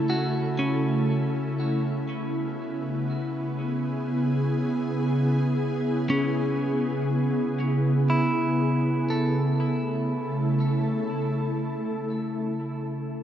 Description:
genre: ambient.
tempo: free time.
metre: none.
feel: none.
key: A major.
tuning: A4 = 440 Hz.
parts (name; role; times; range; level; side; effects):
ethereal airy pad; sustained chords; 0.0-12.7 s; C#3 to A4; -24 LUFS; equal; ensemble chorus, built-in reverb.
clean electric guitar; arpeggios; 0.0-12.2 s; C#4 to B5; -31 LUFS; equal; tape echo.
room: wet cathedral reverb, RT60 6.2 s.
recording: dark, warm production.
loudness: -23 LUFS.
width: side -10 dB against mid.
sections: 0.0-9.1 A section; 9.1-13.1 B section.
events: none.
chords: 0.0 A; 1.1 C#m7; 9.1 A.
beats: free time.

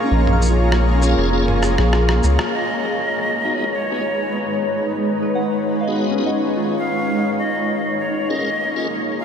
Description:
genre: ambient dub.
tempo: 99 BPM.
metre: 4/4.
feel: straight.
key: G# dorian.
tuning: A4 = 440 Hz.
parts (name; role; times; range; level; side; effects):
granular cloud pad; sustained chords; 0.0-9.2 s; G#3 to A#5; -21 LUFS; equal; built-in reverb.
soft synth bell; arpeggios; 0.0-7.8 s; C#4 to E#6; -27 LUFS; equal; chorus, low-pass filter, ping-pong delay.
bubbling stepped-filter texture; texture; 0.0-9.2 s; C#5 to E#5; -28 LUFS; left 3 dB; chorus, built-in reverb.
round analog bass; bass; 0.1-2.4 s; E#1 to C#2; -16 LUFS; equal; none.
lo-fi sampler-style drum kit; drums; 0.3-2.5 s; rim click, shaker, toms; -27 LUFS; equal; overdrive, dub echo.
tonewheel organ; stabs; 1.0-8.9 s; B3 to A#4; -30 LUFS; left 1 dB; chorus vibrato, slow rotary speaker, low-pass filter, dub echo.
bright silver concert flute; melody; 2.5-9.2 s; C#5 to E#5; -24 LUFS; equal; dub echo.
room: wet huge ambient reverb, RT60 7.8 s.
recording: dreamy mix soaked in reverb.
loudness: -17 LUFS.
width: side -7 dB against mid.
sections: 0.0-2.5 A section; 2.5-9.2 B section.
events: drum fill 1.6-2.5; band accent 2.4-2.7; filter sweep on tonewheel organ 2.5-9.2.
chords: 0.0 A#m7; 2.5 G#m7; 7.4 A#m7.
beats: | 0.12 0.72 1.33 1.94 | 2.54 3.15 3.75 4.36 | 4.97 5.57 6.18 6.78 | 7.39 8.00 8.60 9.21.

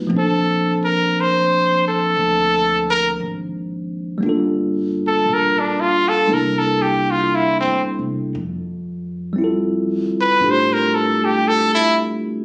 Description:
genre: jazz ballad.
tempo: 58 BPM.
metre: 4/4.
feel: swing 66% on 8ths.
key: unclear.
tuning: A4 = 441 Hz.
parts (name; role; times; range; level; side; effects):
bell-like tine electric piano; accompaniment; 0.0-12.4 s; F3 to C5; -23 LUFS; equal; none.
upright bass; bass; 0.0-12.4 s; G1 to C3; -31 LUFS; equal; none.
brilliant trumpet; melody; 0.2-12.0 s; C4 to C5; -19 LUFS; equal; none.
room: light reverb.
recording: recorded on a phone in the room, club reverb, compression.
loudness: -18 LUFS.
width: mono.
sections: 0.0-12.4 A section.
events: trumpet solo 0.0-12.4.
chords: 0.1 Bbmaj9; 4.2 Gm9; 6.3 C13; 8.3 Fmaj9.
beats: | 0.11 1.14 2.16 3.19 | 4.22 5.25 6.28 7.31 | 8.35 9.38 10.41 11.44.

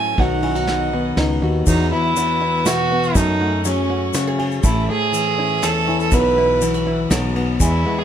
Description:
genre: acoustic folk duo or small band.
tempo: 121 BPM.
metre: 3/4.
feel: straight.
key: E major.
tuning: A4 = 438 Hz.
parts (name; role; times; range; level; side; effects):
warm fiddle; melody; 0.0-8.0 s; C#4 to G#5; -20 LUFS; right 3 dB; none.
nylon-string guitar; accompaniment; 0.0-8.0 s; E2 to G#4; -22 LUFS; left 4 dB; none.
warm chamber string section; sustained chords; 0.0-8.0 s; F#3 to E6; -32 LUFS; left 2 dB; none.
bluegrass banjo; arpeggios; 0.0-8.0 s; E3 to A4; -29 LUFS; right 4 dB; none.
woody fretless electric bass; bass; 0.2-7.8 s; A1 to F#2; -21 LUFS; equal; none.
vintage brush drum kit; drums; 0.2-7.7 s; crash cymbal, kick drum, ride cymbal, snare drum; -25 LUFS; equal; none.
tube shaker; percussion; 1.7-7.7 s; none; -29 LUFS; left 6 dB; none.
room: light reverb.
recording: none.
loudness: -16 LUFS.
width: side -9 dB against mid.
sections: 0.0-1.7 A section; 1.7-8.0 B section.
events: none.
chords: 0.2 B; 1.7 Esus2; 3.2 F#madd9; 4.6 A; 6.1 Bsus4; 7.1 B.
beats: | 0.18 0.68 1.18 | 1.67 2.17 2.66 | 3.15 3.65 4.14 | 4.64 5.13 5.62 | 6.12 6.61 7.11 | 7.60.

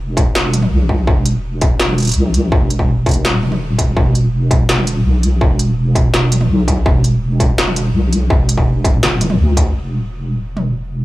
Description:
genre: half-time drum and bass.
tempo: 166 BPM.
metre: 4/4.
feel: half-time.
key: unclear.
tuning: A4 = 440 Hz.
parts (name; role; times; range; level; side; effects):
deep soft wobble bass; bass; 0.0-11.0 s; E1 to D2; -15 LUFS; equal; chorus.
electronic kick drum; drums; 0.2-9.6 s; none; -14 LUFS; equal; distortion, studio reverb.
industrial drum kit; drums; 0.2-10.6 s; hi-hat, snare drum, toms; -19 LUFS; equal; studio reverb.
room: little or no reverb.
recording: small room ambience.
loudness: -12 LUFS.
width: side -17 dB against mid.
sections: 0.0-9.8 A section; 9.8-11.0 B section.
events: none.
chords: none.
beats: 0.35 0.71 | 1.07 1.44 1.80 2.16 | 2.52 2.88 3.24 3.61 | 3.97 4.33 4.69 5.05 | 5.41 5.77 6.14 6.50 | 6.86 7.22 7.58 7.94 | 8.30 8.67 9.03 9.39 | 9.75 10.11 10.47 10.84.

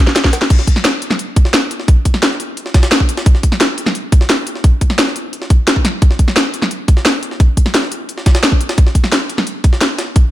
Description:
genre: drum and bass.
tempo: 174 BPM.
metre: 4/4.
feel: straight.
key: none.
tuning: none.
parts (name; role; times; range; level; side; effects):
drum and bass drum kit; drums; 0.1-10.2 s; crash cymbal, hi-hat, snare drum; -15 LUFS; equal; none.
electronic kick drum; drums; 0.2-10.2 s; none; -10 LUFS; equal; none.
jungle sampler-style drum kit; drums; 0.2-10.2 s; hi-hat, snare drum; -24 LUFS; equal; none.
room: light reverb, digital ambience.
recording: none.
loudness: -11 LUFS.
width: side -14 dB against mid.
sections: 0.0-10.3 A section.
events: drum fill 0.0-0.5.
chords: none.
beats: 0.16 | 0.50 0.85 1.19 1.54 | 1.88 2.23 2.57 2.92 | 3.26 3.61 3.95 4.30 | 4.64 4.99 5.33 5.67 | 6.02 6.37 6.71 7.05 | 7.40 7.74 8.09 8.43 | 8.78 9.12 9.47 9.81 | 10.16.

